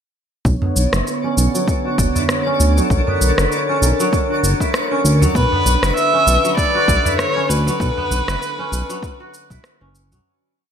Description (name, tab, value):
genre	organic downtempo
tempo	98 BPM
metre	4/4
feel	swing 56% on 16ths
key	B harmonic minor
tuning	A4 = 440 Hz
part	warm analog pad	sustained chords	0.4-10.2 s	D3 to C#5	-22 LUFS	left 1 dB	chorus, sidechain pumping
part	twinkling granular texture	texture	0.8-10.3 s	D4 to C#6	-28 LUFS	equal	built-in reverb, wide subtle chorus
part	smooth synth bass	bass	0.5-10.2 s	F#1 to D2	-17 LUFS	equal	sidechain pumping
part	electronic cabasa and rim click	drums	0.5-10.2 s	none	-23 LUFS	equal	none
part	electronic kick drum	drums	0.5-9.6 s	none	-20 LUFS	equal	none
part	kora	arpeggios	0.6-10.7 s	F#3 to F#4	-24 LUFS	right 2 dB	low-pass filter, digital delay
part	udu	percussion	0.6-10.2 s	none	-22 LUFS	right 1 dB	none
part	clear kamancheh	melody	5.4-9.6 s	B4 to E5	-18 LUFS	equal	digital delay
room	moderate plate reverb, RT60 2.0 s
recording	bright 1980s-style digital production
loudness	-14 LUFS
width	side -8 dB against mid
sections	0.5-10.3 groove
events	filter sweep on kora 0.5-10.3; fade-out 7.0-10.3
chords	0.5 Bmadd9; 5.4 Dmaj13/F#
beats	| 0.46 1.07 1.68 2.29 | 2.90 3.52 4.13 4.74 | 5.35 5.96 6.58 7.19 | 7.80 8.41 9.03 9.64